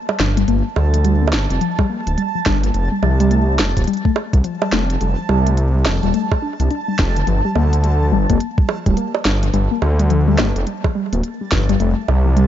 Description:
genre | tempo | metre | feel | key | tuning
IDM | 106 BPM | 4/4 | swing 62% on 16ths | G minor | A4 = 441 Hz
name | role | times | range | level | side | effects
backwards swelling texture | texture | 0.0-12.5 s | A5 | -28 LUFS | right 2 dB | built-in reverb
warbly dusty pluck | arpeggios | 0.1-12.4 s | D3 to D4 | -21 LUFS | left 3 dB | chorus, phaser, tape echo
organic electronic drum kit | drums | 0.1-12.5 s | bongos, hi-hat, snare drum | -23 LUFS | right 3 dB | tape echo
dark detuned saw bass | bass | 0.2-12.5 s | D1 to D2 | -16 LUFS | equal | none
electronic kick drum | drums | 1.8-11.7 s | none | -17 LUFS | equal | none
room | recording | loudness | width
digital ambience | dark, warm production, nothing above 7.5 kHz | -15 LUFS | side -11 dB against mid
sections
0.0-12.5 A section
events
none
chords
0.0 G7(no3); 2.7 F; 7.3 G7(no3); 11.8 F

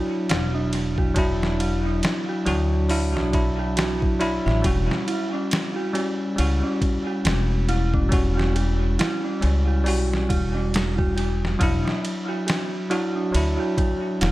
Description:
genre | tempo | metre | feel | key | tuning
trip hop | 69 BPM | 4/4 | swing 58% on 16ths | E dorian | A4 = 441 Hz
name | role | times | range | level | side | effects
bell-like tine electric piano | accompaniment | 0.0-14.3 s | F#3 to F#4 | -26 LUFS | equal | tremolo, tape echo
dark detuned synth bell | arpeggios | 0.0-14.3 s | C#4 to E5 | -28 LUFS | right 1 dB | chorus, tape echo
upright bass | bass | 0.3-14.3 s | E1 to D2 | -23 LUFS | equal | none
trip hop sampler-style drum kit | drums | 0.3-14.3 s | hi-hat, kick drum, ride cymbal, snare drum | -26 LUFS | equal | tape echo
room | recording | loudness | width
little or no reverb | echo-heavy mix | -20 LUFS | side -17 dB against mid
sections
0.0-14.3 A section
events
none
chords
0.0 Dadd9/E; 4.6 Em69; 11.6 Dadd9/E

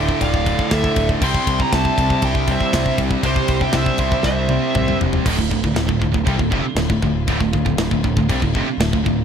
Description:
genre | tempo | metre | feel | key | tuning
heavy metal | 119 BPM | 4/4 | straight | D minor | A4 = 440 Hz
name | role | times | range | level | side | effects
high-gain lead guitar | melody | 0.0-5.0 s | C5 to C6 | -23 LUFS | equal | distortion, tape echo
smooth overdriven lead guitar | second line | 0.0-5.0 s | G4 to G5 | -29 LUFS | right 4 dB | tape echo
rich studio string section | sustained chords | 0.0-9.2 s | C3 to F4 | -32 LUFS | left 2 dB | none
biting overdriven guitar | riff | 0.0-9.2 s | D2 to C4 | -26 LUFS | equal | none
distorted electric guitar | riff | 0.0-9.2 s | D2 to C4 | -25 LUFS | left 11 dB | overdrive
high-gain distorted guitar | riff | 0.0-9.2 s | D2 to C4 | -24 LUFS | right 12 dB | distortion
growling picked electric bass | bass | 0.0-9.2 s | D1 to D2 | -22 LUFS | equal | overdrive
tight metal drum kit | drums | 0.1-9.2 s | crash cymbal, kick drum, ride cymbal, snare drum, toms | -22 LUFS | left 1 dB | none
room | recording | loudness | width
little or no reverb | none | -16 LUFS | side -8 dB against mid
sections
0.0-5.3 A section; 5.3-9.2 B section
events
drum fill 4.2-5.3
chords
0.0 Dm; 1.2 C; 5.3 Dm

